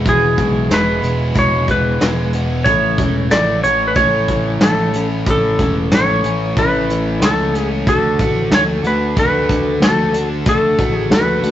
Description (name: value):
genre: folk rock and heartland rock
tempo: 92 BPM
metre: 4/4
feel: straight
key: unclear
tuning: A4 = 442 Hz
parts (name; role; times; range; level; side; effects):
- picked steel-string acoustic guitar; accompaniment; 0.0-11.5 s; E2 to F#4; -22 LUFS; left 2 dB; none
- biting overdriven guitar; riff; 0.0-11.5 s; E2 to D4; -23 LUFS; equal; none
- picked electric bass; bass; 0.0-11.5 s; E1 to D2; -21 LUFS; equal; none
- clean lap steel guitar; melody; 0.1-11.5 s; G#4 to D5; -17 LUFS; equal; none
- soft brush drum kit; drums; 0.1-11.5 s; hi-hat, kick drum, snare drum; -18 LUFS; equal; none
room: moderate stone room reverb, RT60 1.2 s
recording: rough rehearsal-room recording, nothing above 7.9 kHz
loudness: -13 LUFS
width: side -12 dB against mid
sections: 0.0-11.5 A section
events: none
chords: 0.0 E; 2.7 A; 7.9 D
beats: | 0.06 0.71 1.36 2.01 | 2.66 3.31 3.96 4.61 | 5.26 5.91 6.56 7.21 | 7.87 8.52 9.16 9.81 | 10.46 11.11